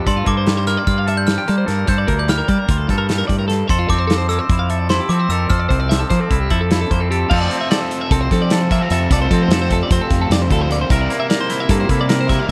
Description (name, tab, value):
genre	math rock and midwest emo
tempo	299 BPM (eighths)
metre	9/8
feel	straight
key	unclear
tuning	A4 = 442 Hz
part	twangy electric guitar	accompaniment	0.0-12.5 s	F2 to Bb4	-27 LUFS	equal	plate reverb
part	twelve-string electric guitar	arpeggios	0.0-12.5 s	E4 to F5	-26 LUFS	equal	plate reverb
part	glockenspiel with brass mallets	melody	0.1-6.9 s	C6 to G6	-26 LUFS	equal	tape echo
part	fuzz fingered electric bass	bass	0.1-12.5 s	C2 to G3	-21 LUFS	equal	overdrive
part	loose indie drum kit	drums	0.1-12.4 s	crash cymbal, hi-hat, kick drum, snare drum	-22 LUFS	equal	none
part	biting overdriven guitar	riff	7.3-12.5 s	F2 to F4	-26 LUFS	equal	none
room	light reverb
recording	dark, warm production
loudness	-17 LUFS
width	mono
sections	0.0-7.3 A section; 7.3-12.5 B section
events	none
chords	0.1 Gm9; 3.7 Fmaj7